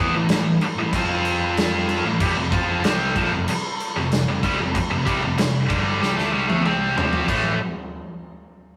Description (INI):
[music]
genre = hard rock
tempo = 94 BPM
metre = 4/4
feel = straight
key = unclear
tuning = A4 = 441 Hz
[part]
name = heavy high-gain guitar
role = riff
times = 0.0-7.5 s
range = F2 to F4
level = -23 LUFS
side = equal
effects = distortion
[part]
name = picked electric bass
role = bass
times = 0.0-7.6 s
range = F1 to F2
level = -32 LUFS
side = equal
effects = none
[part]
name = big rock drum kit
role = drums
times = 0.3-7.4 s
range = crash cymbal, kick drum, snare drum, toms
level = -26 LUFS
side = equal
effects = none
[sound]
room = moderate stone room reverb, RT60 0.9 s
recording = rough rehearsal-room recording, warm saturation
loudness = -21 LUFS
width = mono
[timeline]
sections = 0.0-7.3 A section; 7.3-8.8 B section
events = drum fill 6.0-7.3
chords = 0.0 A5; 0.9 F5; 2.0 A5; 2.2 F5; 7.3 A5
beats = 0.30 0.94 1.57 | 2.21 2.85 3.48 4.12 | 4.75 5.38 6.02 6.65 | 7.29